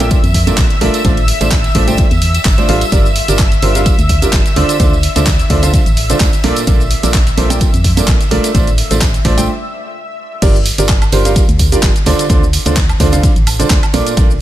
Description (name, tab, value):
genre	piano house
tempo	128 BPM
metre	4/4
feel	swing 54% on 16ths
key	G dorian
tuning	A4 = 440 Hz
part	analog string pad	sustained chords	0.0-10.4 s	E5 to E6	-22 LUFS	left 2 dB	ensemble chorus, sidechain pumping
part	clear upright piano	riff	0.0-14.3 s	Bb2 to G5	-16 LUFS	right 2 dB	sidechain pumping, dub echo
part	organ-like FM bass	bass	0.0-14.4 s	G1 to F2	-15 LUFS	equal	sidechain pumping
part	dusty soul sampler-style drum kit	drums	0.0-14.3 s	hi-hat, ride cymbal, snare drum	-28 LUFS	right 2 dB	none
part	garage drum kit	drums	0.0-14.4 s	crash cymbal, handclaps, hi-hat, shaker, woodblock	-20 LUFS	equal	overdrive, studio reverb
part	tambourine	percussion	0.0-14.3 s	none	-27 LUFS	right 8 dB	none
part	electronic kick drum	drums	0.1-14.3 s	none	-13 LUFS	equal	studio reverb
room	digital ambience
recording	none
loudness	-9 LUFS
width	side -13 dB against mid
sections	0.0-10.4 A section; 10.4-14.4 B section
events	break 9.5-10.4; drop 10.4-14.4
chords	0.0 Bbmaj7; 1.0 F6/A; 2.9 Gm7; 4.6 Dm7; 6.4 Bbmaj7; 8.5 F6/A; 10.4 Gm7; 12.1 Dm7